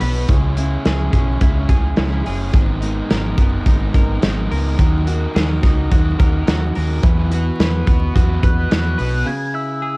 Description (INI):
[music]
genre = jangly indie pop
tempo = 107 BPM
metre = 4/4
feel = straight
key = C# dorian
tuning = A4 = 439 Hz
[part]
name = raw garage guitar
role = accompaniment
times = 0.0-9.3 s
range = G#2 to B4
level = -24 LUFS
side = right 1 dB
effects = overdrive, spring reverb
[part]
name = direct-recorded clean electric guitar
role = arpeggios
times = 0.0-10.0 s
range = G#2 to B4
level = -27 LUFS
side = left 1 dB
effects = analog chorus
[part]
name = deep dub fingered electric bass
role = bass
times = 0.0-9.2 s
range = F#1 to E2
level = -19 LUFS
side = equal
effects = none
[part]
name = modern studio drum kit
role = drums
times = 0.0-9.1 s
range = hi-hat, kick drum, snare drum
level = -16 LUFS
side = equal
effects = vintage 12-bit sampler grit, cassette tape
[part]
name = hollow clarinet-like synth lead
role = melody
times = 8.4-10.0 s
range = E6 to G#6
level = -24 LUFS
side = equal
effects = chorus, cassette tape
[sound]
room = little or no reverb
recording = home recording on cassette, vinyl crackle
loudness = -14 LUFS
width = side -28 dB against mid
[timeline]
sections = 0.3-9.3 A section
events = none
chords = 0.3 C#m; 2.5 G#madd9; 4.8 D#m; 7.0 Esus2; 9.3 C#m